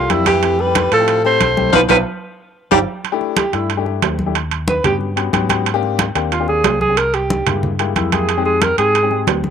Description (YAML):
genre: Afro-Cuban jazz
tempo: 183 BPM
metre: 4/4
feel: straight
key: unclear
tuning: A4 = 441 Hz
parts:
  - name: breathy alto saxophone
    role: melody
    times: 0.0-9.2 s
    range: E4 to C5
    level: -16 LUFS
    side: right 3 dB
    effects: none
  - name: clear baritone saxophone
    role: second line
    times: 0.0-2.8 s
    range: C3 to A3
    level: -19 LUFS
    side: left 12 dB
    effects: none
  - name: warm upright piano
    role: accompaniment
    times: 0.0-9.4 s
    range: Ab3 to G4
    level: -22 LUFS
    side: left 12 dB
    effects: none
  - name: fingered electric bass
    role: bass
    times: 0.0-9.5 s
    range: G1 to A2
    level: -22 LUFS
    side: equal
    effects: none
  - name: congas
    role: percussion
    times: 0.1-9.5 s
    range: none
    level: -22 LUFS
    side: left 1 dB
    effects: none
  - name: timbales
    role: percussion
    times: 0.1-9.4 s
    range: none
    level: -20 LUFS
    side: right 14 dB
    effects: none
room: moderate spring reverb, RT60 1.3 s, small room ambience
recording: 1960s-style stereo with parts hard left and right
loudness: -14 LUFS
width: side -7 dB against mid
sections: 0.0-3.0 A section; 3.0-9.5 B section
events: band accent 1.7-3.0; drum fill 2.2-3.0; alto saxophone solo 3.0-9.5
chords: 0.4 Fmaj9; 1.7 Bdim; 2.4 G5; 3.0 Ebmaj7#11; 4.4 Eb7alt; 5.7 Abmaj9#11; 7.0 C7b13; 8.3 Fm9